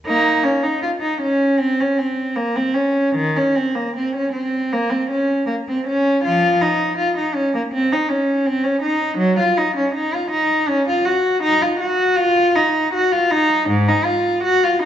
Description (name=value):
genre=classical, baroque-style suite movement for unaccompanied cello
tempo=80 BPM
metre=4/4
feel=rubato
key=unclear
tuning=A4 = 440 Hz
part: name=warm cello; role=solo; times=0.1-14.9 s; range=Ab2 to Gb4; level=-16 LUFS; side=equal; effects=none
room=wet recital hall reverb, RT60 1.5 s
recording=nothing above 8.0 kHz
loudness=-16 LUFS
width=side -10 dB against mid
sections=0.1-14.9 A section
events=none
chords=none